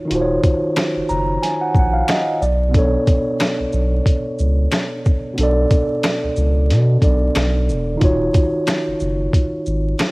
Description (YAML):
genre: hip hop, boom-bap hip-hop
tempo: 91 BPM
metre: 4/4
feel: swing 59% on 16ths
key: unclear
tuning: A4 = 442 Hz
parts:
  - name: mellow tine electric piano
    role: accompaniment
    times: 0.0-10.1 s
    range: B2 to Bb5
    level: -19 LUFS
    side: equal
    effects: medium stereo tremolo, high-pass filter, low-pass filter, cassette tape
  - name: saturated sub bass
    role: bass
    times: 0.1-9.9 s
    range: Eb1 to B2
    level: -18 LUFS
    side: equal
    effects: none
  - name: boom bap sampler-style drum kit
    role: drums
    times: 0.1-10.1 s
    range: hi-hat, kick drum, shaker, snare drum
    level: -18 LUFS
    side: equal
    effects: cassette tape
  - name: finger snaps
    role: percussion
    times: 0.8-10.1 s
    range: none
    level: -31 LUFS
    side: left 3 dB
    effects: none
room: little or no reverb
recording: home recording on cassette, vinyl crackle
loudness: -15 LUFS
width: side -24 dB against mid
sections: 0.0-10.1 A section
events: none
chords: 0.0 Ebm9; 2.4 Bm9; 8.0 Ebm9